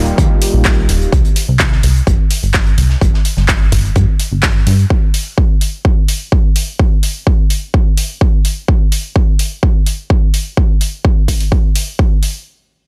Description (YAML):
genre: progressive house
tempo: 127 BPM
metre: 4/4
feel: straight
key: unclear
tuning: A4 = 440 Hz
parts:
  - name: soft supersaw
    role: stabs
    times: 0.0-1.1 s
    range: G3 to G4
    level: -22 LUFS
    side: equal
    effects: sidechain pumping, low-pass filter, digital delay
  - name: plucky analog bass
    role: bass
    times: 0.0-4.9 s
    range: Eb1 to G2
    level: -16 LUFS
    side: equal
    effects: sidechain pumping
  - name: downlifter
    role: sound effects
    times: 0.0-1.1 s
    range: none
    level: -39 LUFS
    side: equal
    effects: none
  - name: crisp fusion drum kit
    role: drums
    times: 0.1-4.9 s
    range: hi-hat, snare drum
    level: -32 LUFS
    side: equal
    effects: none
  - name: electronic kick drum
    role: drums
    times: 0.2-12.1 s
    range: none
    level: -14 LUFS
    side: equal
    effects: none
  - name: big-room dance drum kit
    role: drums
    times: 0.4-12.3 s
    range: handclaps, hi-hat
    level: -22 LUFS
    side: equal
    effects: none
room: digital ambience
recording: none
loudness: -13 LUFS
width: mono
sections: 0.0-12.5 A section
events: filter sweep on supersaw synth 0.0-1.1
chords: 0.0 Ebadd9; 1.1 C5; 3.0 N.C.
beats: 0.18 0.65 | 1.12 1.60 2.07 2.54 | 3.01 3.49 3.96 4.43 | 4.90 5.38 5.85 6.32 | 6.79 7.27 7.74 8.21 | 8.68 9.15 9.63 10.10 | 10.57 11.04 11.52 11.99